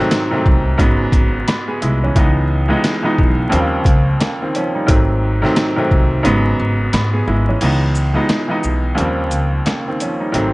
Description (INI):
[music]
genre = hip hop, boom-bap hip-hop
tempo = 88 BPM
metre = 4/4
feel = swing 60% on 16ths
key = unclear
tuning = A4 = 440 Hz
[part]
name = clear upright piano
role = accompaniment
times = 0.0-10.5 s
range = C#2 to B5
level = -17 LUFS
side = equal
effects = cassette tape, high-pass filter, low-pass filter
[part]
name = trip hop sampler-style drum kit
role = drums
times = 0.1-10.5 s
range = crash cymbal, hi-hat, kick drum, shaker, snare drum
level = -17 LUFS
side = equal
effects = none
[part]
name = upright bass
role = bass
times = 0.5-10.5 s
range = G#1 to G#2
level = -18 LUFS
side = equal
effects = none
[sound]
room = digital ambience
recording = vinyl crackle, nothing above 11.0 kHz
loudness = -13 LUFS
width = side -22 dB against mid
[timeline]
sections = 0.0-7.6 A section; 7.6-10.5 A section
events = kick muted 6.2-7.6; break 7.6-10.5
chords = 0.0 G#7b9; 0.8 E69/G#; 2.2 C#m9; 3.5 D#13; 4.9 G#7b9; 6.2 E69/G#; 7.6 C#m9; 9.0 D#13